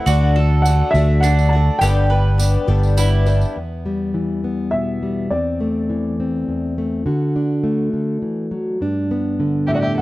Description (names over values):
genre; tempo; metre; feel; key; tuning
indie folk with a building arrangement; 69 BPM (dotted quarters); 6/8; straight; G major; A4 = 439 Hz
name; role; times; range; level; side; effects
warm upright piano; melody; 0.0-6.7, 9.7-10.0 s; D5 to A5; -23 LUFS; right 1 dB; none
picked twelve-string acoustic guitar; accompaniment; 0.0-3.6 s; G2 to G4; -23 LUFS; left 5 dB; none
mandolin; arpeggios; 0.0-3.5 s; D4 to B4; -26 LUFS; right 6 dB; none
fingered electric bass; bass; 0.1-3.4 s; G1 to D2; -14 LUFS; equal; none
tambourine; percussion; 0.1-3.5 s; none; -31 LUFS; right 7 dB; none
fingerpicked plugged-in steel-string acoustic guitar; accompaniment; 3.6-10.0 s; E2 to F#4; -19 LUFS; left 1 dB; none
rich fiddle; second line; 9.7-10.0 s; F#4 to A4; -26 LUFS; right 2 dB; none
room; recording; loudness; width
little or no reverb; dry, close 1970s-style studio recording; -16 LUFS; side -18 dB against mid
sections
0.0-3.6 A section; 3.6-10.0 B section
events
none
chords
0.1 D; 1.8 G; 3.6 Em; 5.3 Am/E; 7.1 D; 8.8 G